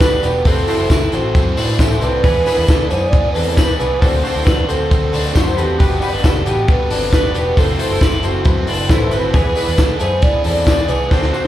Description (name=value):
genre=jangly indie pop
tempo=135 BPM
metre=4/4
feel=straight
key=unclear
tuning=A4 = 440 Hz
part: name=mellow wooden-headed alto flute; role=melody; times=0.0-11.5 s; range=F#4 to D5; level=-20 LUFS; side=right 1 dB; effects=slapback echo
part: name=crunchy overdriven guitar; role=accompaniment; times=0.0-11.5 s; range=E2 to F#4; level=-26 LUFS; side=right 7 dB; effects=slapback echo
part: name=warm analog keys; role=accompaniment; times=0.0-11.5 s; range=D4 to D5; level=-24 LUFS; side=equal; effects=chorus, slapback echo
part: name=electric guitar through a small old amp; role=arpeggios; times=0.0-11.5 s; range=B3 to C5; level=-23 LUFS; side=left 3 dB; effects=slapback echo
part: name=vintage muted fingered electric bass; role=bass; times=0.0-11.5 s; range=E1 to D3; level=-20 LUFS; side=equal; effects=none
part: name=compact cocktail drum kit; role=drums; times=0.0-11.5 s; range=hi-hat, kick drum, snare drum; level=-16 LUFS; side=equal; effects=none
part: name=tambourine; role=percussion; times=0.0-11.4 s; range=none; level=-36 LUFS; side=left 2 dB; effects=none
room=light reverb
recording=live gig heard through the venue's PA, club reverb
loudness=-13 LUFS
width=side -13 dB against mid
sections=0.0-11.5 A section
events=drum fill 11.1-11.5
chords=0.5 F#m7b5; 2.2 E7; 4.0 D7; 5.8 Gmaj7; 7.6 F#m7b5; 9.3 E7